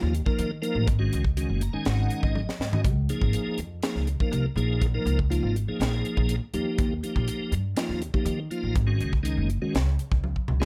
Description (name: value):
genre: electric jazz fusion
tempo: 122 BPM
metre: 4/4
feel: straight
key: unclear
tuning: A4 = 440 Hz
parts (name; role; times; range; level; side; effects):
- tonewheel organ; accompaniment; 0.0-10.7 s; Eb3 to Bb5; -32 LUFS; equal; slow rotary speaker, chorus vibrato
- upright bass; bass; 0.0-10.6 s; Gb1 to Eb3; -29 LUFS; equal; none
- crisp fusion drum kit; drums; 0.1-10.7 s; hi-hat, kick drum, snare drum, toms; -30 LUFS; equal; none
room: light reverb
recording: none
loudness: -26 LUFS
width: mono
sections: 0.0-10.7 A section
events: tonewheel organ fill 1.4-2.8; drum fill 2.4-2.8, 10.2-10.7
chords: 0.0 Ebsus2; 0.9 Ab7sus4; 2.8 Dbadd9; 4.6 Bbm7; 6.5 Ebadd9; 8.8 Ab7sus4; 9.7 N.C.